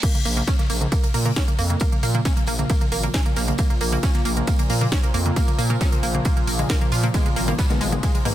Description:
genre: driving peak-time techno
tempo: 135 BPM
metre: 4/4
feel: straight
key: unclear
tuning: A4 = 440 Hz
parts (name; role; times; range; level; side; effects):
- tight sequenced synth; riff; 0.0-8.3 s; Ab3 to Bb4; -27 LUFS; right 3 dB; chorus, tube saturation, sidechain pumping, ping-pong delay
- analog drone; drone; 1.6-8.3 s; Bb2 to F3; -30 LUFS; equal; chorus, sidechain pumping
- electronic kick drum; drums; 0.0-8.1 s; none; -20 LUFS; equal; overdrive
- huge arena drum kit; drums; 0.0-8.3 s; hi-hat, snare drum, tambourine; -34 LUFS; left 1 dB; high-pass filter on hats, low-pass filter on hats, high-pass filter on snare, low-pass filter on snare, high-pass filter on perc, low-pass filter on perc, high-pass filter on room, low-pass filter on room
- techno drum kit; drums; 0.0-8.3 s; crash cymbal, hi-hat, ride cymbal, snare drum, toms; -27 LUFS; left 1 dB; overdrive
- growling FM bass; bass; 0.3-8.3 s; Ab1 to Bb2; -23 LUFS; equal; sidechain pumping
- filtered dub chord stab; stabs; 7.1-8.3 s; Eb3 to Cb4; -29 LUFS; left 3 dB; chorus, sidechain pumping, ping-pong delay
room: little or no reverb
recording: dense, heavily limited modern master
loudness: -18 LUFS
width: side -13 dB against mid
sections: 0.0-8.3 A section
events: drop 0.0-8.3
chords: 0.0 Bb5; 7.1 Abm

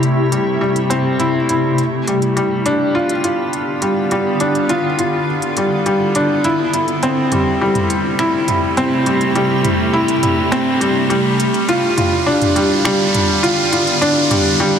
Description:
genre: piano and strings electronica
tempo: 103 BPM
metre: 4/4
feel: straight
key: unclear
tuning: A4 = 441 Hz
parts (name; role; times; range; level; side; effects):
- granular cloud pad; sustained chords; 0.0-14.6 s; C3 to E5; -20 LUFS; equal; built-in reverb
- felt-muted upright piano; riff; 0.0-14.8 s; G3 to F4; -15 LUFS; equal; tape echo
- organic electronic drum kit; drums; 0.0-14.4 s; finger snaps, hi-hat, toms; -24 LUFS; right 1 dB; none
- riser; sound effects; 1.9-14.6 s; none; -25 LUFS; right 2 dB; none
room: wet huge ambient reverb, RT60 4.2 s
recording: none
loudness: -14 LUFS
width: side -8 dB against mid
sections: 0.0-14.8 A section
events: build-up 0.0-14.8; riser 1.9-14.6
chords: 0.0 Am7; 1.8 G7; 6.4 Am7; 11.1 G7

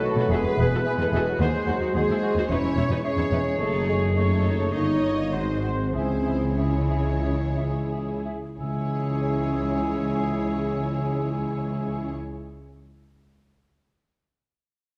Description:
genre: classical, dramatic, fast romantic movement for symphony orchestra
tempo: 86-111 BPM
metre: 4/4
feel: straight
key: C# minor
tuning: A4 = 440 Hz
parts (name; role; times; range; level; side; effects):
- warm symphonic violin section; melody; 0.0-12.1 s; F#4 to D#5; -41 LUFS; equal; none
- clear clarinet; second line; 0.0-12.1 s; D#4 to B#4; -35 LUFS; equal; none
- concert flute; second line; 0.0-12.1 s; D#5 to G#5; -41 LUFS; equal; none
- mellow cor anglais; second line; 0.0-12.1 s; F#4 to E5; -40 LUFS; equal; none
- warm symphonic violin section; second line; 0.0-12.1 s; F#4 to D#5; -41 LUFS; equal; none
- clear trombone section; sustained chords; 0.0-12.1 s; D#3 to A#3; -38 LUFS; equal; none
- mellow French horn section; sustained chords; 0.0-12.1 s; F#3 to D#4; -32 LUFS; equal; none
- warm trumpet section; stabs; 0.0-12.1 s; G#4 to C#5; -37 LUFS; equal; none
- rich symphonic viola section; accompaniment; 0.2-12.1 s; D#4 to C#5; -36 LUFS; equal; none
- warm symphonic cello section; bass; 0.2-12.1 s; D#2 to C#3; -33 LUFS; equal; none
- clear symphonic double bass section; bass; 0.3-12.1 s; E1 to D#2; -32 LUFS; equal; none
- dark tuba; bass; 0.3-12.1 s; E1 to D#2; -33 LUFS; equal; none
- timpani; percussion; 8.6-12.8 s; none; barely audible; none; none
room: wet recital hall reverb, RT60 1.6 s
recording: dark, warm production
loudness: -25 LUFS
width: mono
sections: 0.0-8.6 A section; 8.6-11.4 B section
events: slowing down 2.5-8.6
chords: 0.3 E; 1.4 G#7/D#; 2.5 C#m/E; 3.6 D#m7b5/F#; 4.7 D#7/G; 5.3 G#7; 5.9 C#m

